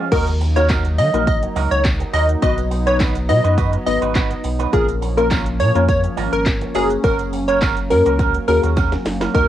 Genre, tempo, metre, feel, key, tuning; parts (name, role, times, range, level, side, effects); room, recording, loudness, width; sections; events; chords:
dance-pop; 104 BPM; 4/4; straight; Eb minor; A4 = 440 Hz
chorused pulse-width pad; sustained chords; 0.0-9.5 s; F3 to Eb4; -27 LUFS; equal; sidechain pumping, cassette tape
electric guitar with an envelope filter; riff; 0.0-9.5 s; Db4 to B4; -25 LUFS; right 11 dB; lush chorus, cassette tape
plucky unison lead; melody; 0.1-9.5 s; Ab4 to Eb5; -19 LUFS; equal; sidechain pumping, tape echo
deep mellow chord stab; accompaniment; 0.1-9.5 s; Bb3 to B4; -24 LUFS; left 9 dB; chorus, sidechain pumping, cassette tape
warm sub bass; bass; 0.1-9.5 s; Gb1 to Eb3; -20 LUFS; equal; sidechain pumping
house drum kit; drums; 0.1-9.5 s; crash cymbal, handclaps, hi-hat, kick drum, shaker, snare drum; -21 LUFS; equal
tambourine; percussion; 0.1-9.5 s; -43 LUFS; left 14 dB
light reverb; home recording on cassette; -15 LUFS; side -12 dB against mid
0.1-9.5 A section
drop 0.1-9.5; drum fill 8.8-9.3
0.1 Ebm; 2.4 B; 4.7 Bbm; 6.8 Gb